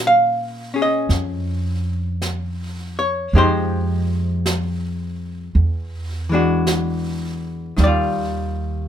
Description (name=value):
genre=jazz ballad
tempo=54 BPM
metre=4/4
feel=swing 66% on 8ths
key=Bb minor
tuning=A4 = 441 Hz
part: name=archtop guitar, miked and amplified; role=accompaniment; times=0.0-8.9 s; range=Eb3 to F5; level=-19 LUFS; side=left 1 dB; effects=none
part: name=upright bass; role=bass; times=0.0-8.9 s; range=Eb2 to Bb2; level=-22 LUFS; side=right 1 dB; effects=none
part: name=jazz brush drum kit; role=drums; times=1.1-8.9 s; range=brushed snare drum, hi-hat, snare drum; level=-29 LUFS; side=right 2 dB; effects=none
room=light reverb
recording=minimal, uncompressed stereo recording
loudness=-18 LUFS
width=side -10 dB against mid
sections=0.0-8.9 A section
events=none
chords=0.0 Bbm7; 3.3 Fm9; 5.6 E9; 7.8 Ebmaj9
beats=1.10 2.22 | 3.33 4.45 5.56 6.67 | 7.78